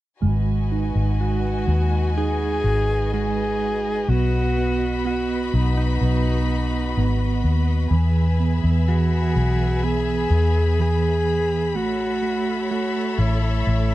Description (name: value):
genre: pop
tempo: 63 BPM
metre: 4/4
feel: straight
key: unclear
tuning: A4 = 440 Hz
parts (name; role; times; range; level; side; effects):
- tine electric piano; accompaniment; 0.2-13.9 s; E3 to D#4; -26 LUFS; right 6 dB; medium tremolo
- warm studio string section; sustained chords; 0.2-13.9 s; F#4 to B5; -30 LUFS; left 3 dB; none
- vintage muted fingered electric bass; bass; 0.2-13.9 s; G#1 to E2; -21 LUFS; left 1 dB; none
- warm alto saxophone; melody; 1.2-13.9 s; D#4 to G#4; -25 LUFS; left 1 dB; none
room: little or no reverb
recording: dry, close 1970s-style studio recording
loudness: -19 LUFS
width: side -15 dB against mid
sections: 0.2-13.9 A section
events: none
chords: 0.2 G#m7; 7.9 E; 11.8 Aadd9